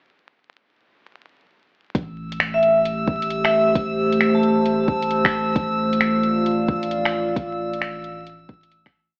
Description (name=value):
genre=future garage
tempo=133 BPM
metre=4/4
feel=swing 64% on 16ths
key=A minor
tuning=A4 = 440 Hz
part: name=warm sub bass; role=bass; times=1.9-9.2 s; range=A1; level=-36 LUFS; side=equal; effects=sidechain pumping
part: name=electronic kick drum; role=drums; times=1.9-8.9 s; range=none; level=-26 LUFS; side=equal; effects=none
part: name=garage drum kit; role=drums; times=1.9-8.9 s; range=finger snaps, hi-hat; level=-26 LUFS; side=equal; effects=overdrive
part: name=dark analog pad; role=sustained chords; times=2.0-9.2 s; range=A3 to F5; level=-24 LUFS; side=equal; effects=chorus, sidechain pumping
part: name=drifting glass-harmonics texture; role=texture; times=2.3-9.2 s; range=E6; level=-30 LUFS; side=equal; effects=chorus, built-in reverb
part: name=vibraphone with medium hard mallets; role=melody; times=2.5-4.8 s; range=E5 to A5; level=-24 LUFS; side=equal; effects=vintage 12-bit sampler grit, tape echo
room=moderate scoring stage reverb, RT60 1.9 s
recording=vinyl crackle, AM radio sound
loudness=-21 LUFS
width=mono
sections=2.0-9.2 groove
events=fade-out 6.8-9.2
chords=2.0 Am7; 5.6 Dm/A